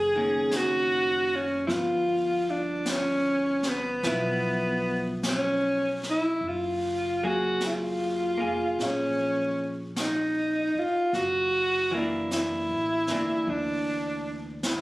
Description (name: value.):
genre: jazz ballad.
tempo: 51 BPM.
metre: 4/4.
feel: swing 68% on 8ths.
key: F# major.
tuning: A4 = 440 Hz.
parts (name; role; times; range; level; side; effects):
breathy alto saxophone; melody; 0.0-14.8 s; B3 to G#4; -25 LUFS; equal; plate reverb.
vintage hollow-body jazz guitar; accompaniment; 0.0-14.8 s; D#3 to G#4; -33 LUFS; equal; none.
upright bass; bass; 0.0-14.8 s; E#1 to D2; -39 LUFS; equal; none.
jazz brush drum kit; drums; 0.5-14.8 s; brushed snare drum, hi-hat, snare drum; -36 LUFS; equal; none.
room: moderate large studio reverb, RT60 1.1 s.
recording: recorded on a phone in the room, studio reverb, compression.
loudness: -24 LUFS.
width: side -18 dB against mid.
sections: 0.0-6.4 A section; 6.4-14.8 B section.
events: none.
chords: 0.0 Bmaj9 (rootless); 1.7 G6; 6.4 F#maj9; 11.1 F#7b13.